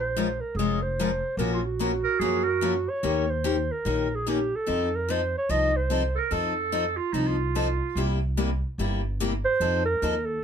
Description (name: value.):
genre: acoustic string swing (jazz manouche).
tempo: 146 BPM.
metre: 4/4.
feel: swing 62% on 8ths.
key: unclear.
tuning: A4 = 440 Hz.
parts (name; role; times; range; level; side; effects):
mellow clarinet; melody; 0.0-6.2, 9.4-10.4 s; F4 to Eb5; -27 LUFS; right 3 dB; none.
upright bass; bass; 0.0-10.4 s; F1 to Gb2; -30 LUFS; right 1 dB; none.
picked steel-string acoustic guitar; accompaniment; 0.2-10.1 s; C3 to Bb4; -28 LUFS; left 6 dB; none.
clear clarinet; second line; 2.0-2.7, 6.2-8.1 s; Eb4 to Bb4; -27 LUFS; right 7 dB; none.
room: light reverb.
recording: close, detailed microphones.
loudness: -24 LUFS.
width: side -8 dB against mid.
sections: 0.0-10.4 A section.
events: none.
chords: 0.0 Bbm7; 1.4 Gbmaj7/Bb; 3.0 Eb7; 4.7 F7; 8.0 C7; 9.6 F7.